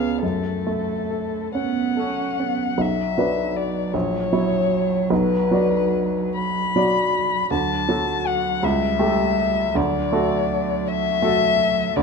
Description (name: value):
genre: classical, slow romantic movement for piano trio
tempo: 44-56 BPM (dotted quarters)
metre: 6/8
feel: rubato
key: B minor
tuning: A4 = 439 Hz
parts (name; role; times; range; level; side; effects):
- dark violin; melody; 0.0-12.0 s; A4 to B5; -23 LUFS; left 8 dB; none
- warm cello; second line; 0.0-12.0 s; F#3 to C#4; -27 LUFS; right 10 dB; none
- clear baby grand piano; accompaniment; 0.0-12.0 s; A#1 to D5; -22 LUFS; right 2 dB; none
room: wet large studio reverb, RT60 1.5 s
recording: none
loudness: -19 LUFS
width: side -5 dB against mid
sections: 0.0-2.8 A section; 2.8-12.0 B section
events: none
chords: 0.2 F#m; 2.8 Bm; 3.9 F#7/A#; 5.1 Bm; 7.5 D; 8.6 A7/C#; 9.8 D